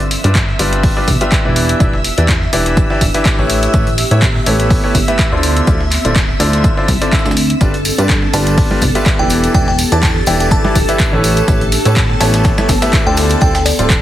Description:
piano house; 124 BPM; 4/4; swing 55% on 16ths; G mixolydian; A4 = 439 Hz
string machine, violins; sustained chords; 0.0-14.0 s; A4 to E6; -22 LUFS; equal; ensemble chorus, sidechain pumping
plucky analog bass; bass; 0.0-14.0 s; D1 to A2; -16 LUFS; equal; sidechain pumping
breakbeat sampler-style drum kit; drums; 0.0-14.0 s; hi-hat, snare drum, tambourine; -27 LUFS; right 2 dB; high-pass filter on snare, high-pass filter on perc, high-pass filter on hats
deep dark ambient pad; texture; 0.0-14.0 s; F3 to F5; -23 LUFS; right 1 dB; chorus, built-in reverb, sidechain pumping
punchy analog drum machine; drums; 0.1-14.0 s; handclaps, hi-hat; -19 LUFS; left 1 dB
bright concert grand piano; riff; 0.2-13.9 s; D3 to E5; -18 LUFS; equal; sidechain pumping, tape echo
electronic kick drum; drums; 0.4-14.0 s; -14 LUFS; equal
tambourine and congas; percussion; 7.6-14.0 s; -26 LUFS; right 3 dB
glassy synth bell; melody; 8.3-13.8 s; D5 to A5; -21 LUFS; right 1 dB; chorus, tape echo
light reverb; heavily compressed radio sound; -10 LUFS; side -13 dB against mid
0.0-14.0 A section
0.0 G7; 1.6 Em7; 3.5 A9; 5.4 Dm9; 7.6 G7; 9.3 Em7; 11.2 A9; 13.2 Dm9

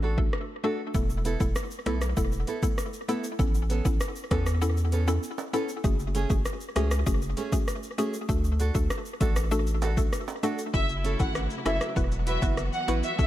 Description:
dancehall; 98 BPM; 4/4; straight; A4 = 440 Hz
nylon-string guitar; arpeggios; 0.0-13.0 s; A3 to B4; -35 LUFS; right 5 dB
saturated sub bass; bass; 0.0-13.3 s; E1 to E2; -27 LUFS; equal
mallet-like synth pluck; accompaniment; 0.2-13.3 s; A3 to B4; -32 LUFS; left 2 dB; chorus, sidechain pumping, tape echo
afro-pop drum kit; drums; 0.2-13.3 s; hi-hat, kick drum, rim click, shaker; -29 LUFS; equal; overdrive, tape echo
tube shaker and timbales; percussion; 0.9-10.7 s; -43 LUFS; right 6 dB
warm studio violin section; melody; 10.7-13.3 s; E5 to F#5; -31 LUFS; equal; tape echo
warm studio string section; sustained chords; 10.7-13.3 s; C#3 to F#4; -37 LUFS; equal
small room ambience; echo-heavy mix; -25 LUFS; side -14 dB against mid
0.0-10.7 A section; 10.7-13.3 B section
break 0.0-0.9
0.0 D; 0.9 Esus4; 3.4 Aadd9; 5.8 F#madd9; 8.3 D; 10.7 F#m7; 12.0 Esus2

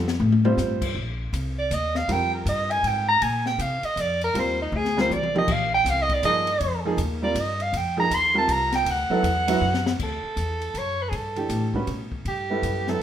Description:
modal jazz; 159 BPM; 3/4; swing 64% on 8ths; Bb mixolydian, G lydian from 10.0 s; A4 = 439 Hz
warm upright piano; accompaniment; 0.0-13.0 s; E3 to C5; -27 LUFS; right 3 dB
upright bass; bass; 0.0-13.0 s; Bb1 to C3; -27 LUFS; left 1 dB
open jazz drum kit; drums; 0.1-12.9 s; crash cymbal, hi-hat, kick drum, ride cymbal, snare drum, toms; -32 LUFS; left 4 dB
warm soprano saxophone; melody; 1.6-13.0 s; Eb4 to C6; -23 LUFS; right 1 dB
moderate large studio reverb, RT60 0.8 s; minimal, uncompressed stereo recording; -21 LUFS; side -10 dB against mid
1.0-10.0 A section; 10.0-13.0 B section
drum fill 0.0-0.6, 4.7-5.5, 9.6-10.0; soprano saxophone solo 0.0-10.0
0.0 Fadd9; 1.0 Bbsus4; 8.9 Dadd9; 10.0 Gmaj9

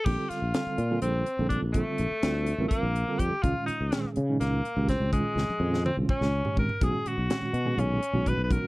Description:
electric jazz fusion; 248 BPM (eighths); 7/8; straight; A4 = 440 Hz
bright tenor saxophone; melody; 0.0-8.7 s; Ab3 to B4; -31 LUFS; left 1 dB; slapback echo
reed electric piano; accompaniment; 0.1-8.7 s; Bb2 to Bb4; -32 LUFS; right 2 dB; fast tremolo
sustaining fretless electric bass; bass; 0.1-8.6 s; Ab1 to Db3; -28 LUFS; equal
crisp fusion drum kit; drums; 0.1-8.6 s; crash cymbal, hi-hat, kick drum, snare drum, toms; -30 LUFS; equal
little or no reverb; dry, close 1970s-style studio recording; -25 LUFS; side -21 dB against mid
0.1-8.7 A section
drum fill 5.4-6.8
0.1 Bbmaj9; 3.4 Dbadd9; 6.8 Bmaj9

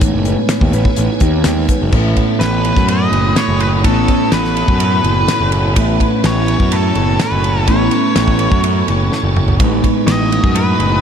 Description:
psychedelic rock; 125 BPM; 4/4; straight; A lydian; A4 = 443 Hz
tonewheel organ; sustained chords; 0.0-11.0 s; D#4 to B5; -25 LUFS; right 6 dB; slow rotary speaker, chorus vibrato
mellow electric guitar; riff; 0.0-11.0 s; A2 to B4; -17 LUFS; right 1 dB; phaser, double-tracked left and right
fuzz picked electric bass; bass; 0.0-11.0 s; F#1 to F#2; -17 LUFS; equal; overdrive
analog drone; drone; 0.0-2.0 s; barely audible
damped 70s drum kit; drums; 0.0-10.9 s; crash cymbal, hi-hat, kick drum, ride cymbal, snare drum, toms; -18 LUFS; equal
octave-fuzz lead guitar; melody; 2.4-11.0 s; A4 to D#5; -18 LUFS; left 1 dB; distortion, diffuse ambient delay
moderate huge ambient reverb, RT60 7.3 s; dreamy mix soaked in reverb; -11 LUFS; side -8 dB against mid
0.0-1.9 A section; 1.9-11.0 B section
drum fill 9.1-9.6
0.0 G#m; 1.9 Aadd9; 9.6 G#m

